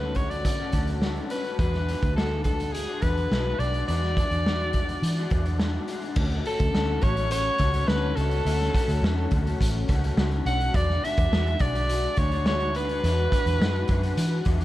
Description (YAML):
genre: indie pop, bedroom pop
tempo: 105 BPM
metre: 4/4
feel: straight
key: D lydian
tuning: A4 = 440 Hz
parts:
  - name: clear soprano saxophone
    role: melody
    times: 0.0-14.4 s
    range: G#4 to F#5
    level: -29 LUFS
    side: equal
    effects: wide subtle chorus, dub echo
  - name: electric guitar through a small old amp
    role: accompaniment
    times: 0.0-14.6 s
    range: D3 to F#4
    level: -32 LUFS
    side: left 4 dB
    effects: analog chorus, vibrato effect
  - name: vintage muted fingered electric bass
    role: bass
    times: 0.0-14.6 s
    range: A1 to E3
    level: -26 LUFS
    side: equal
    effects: none
  - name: raw garage drum kit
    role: drums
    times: 0.1-14.6 s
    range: crash cymbal, hi-hat, kick drum, snare drum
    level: -27 LUFS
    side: equal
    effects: none
room: light reverb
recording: echo-heavy mix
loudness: -22 LUFS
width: side -15 dB against mid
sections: 0.0-6.2 A section; 6.2-14.6 B section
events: none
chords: 0.0 Dmaj7; 1.6 E9; 6.2 Dmaj7; 10.7 E9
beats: 0.45 1.02 | 1.59 2.17 2.74 3.31 | 3.88 4.45 5.03 5.60 | 6.17 6.74 7.31 7.88 | 8.46 9.03 9.60 10.17 | 10.74 11.31 11.88 12.46 | 13.03 13.60 14.17